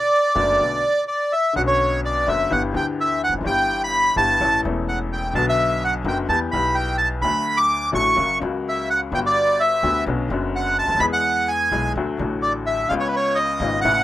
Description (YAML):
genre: tango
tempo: 127 BPM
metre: 4/4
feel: rubato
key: B minor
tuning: A4 = 440 Hz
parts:
  - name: bandoneon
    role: melody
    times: 0.0-14.0 s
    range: B4 to D6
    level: -18 LUFS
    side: right 1 dB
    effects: none
  - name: clear upright piano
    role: accompaniment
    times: 0.3-14.0 s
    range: E1 to A4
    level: -25 LUFS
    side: left 4 dB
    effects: none
  - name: upright bass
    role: bass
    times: 0.4-14.0 s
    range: E1 to E2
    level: -29 LUFS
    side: right 1 dB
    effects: none
room: light reverb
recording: rough home demo mix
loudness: -18 LUFS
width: side -14 dB against mid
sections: 0.0-1.6 A section; 1.6-14.0 A section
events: none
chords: 0.0 Bm7; 1.6 Bmadd9; 2.5 G6; 3.5 Em/G; 4.4 A; 5.3 Bm; 6.3 Em; 7.2 D; 8.2 F#; 9.1 Gmaj7; 10.1 Bmadd9; 11.0 E; 12.0 D; 12.9 C#7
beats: 0.12 0.60 1.08 | 1.56 2.03 2.51 2.98 | 3.46 3.93 4.40 4.87 | 5.34 5.81 6.28 6.75 | 7.22 7.69 8.16 8.64 | 9.12 9.60 10.07 10.55 | 11.02 11.49 11.96 12.43 | 12.90 13.37 13.84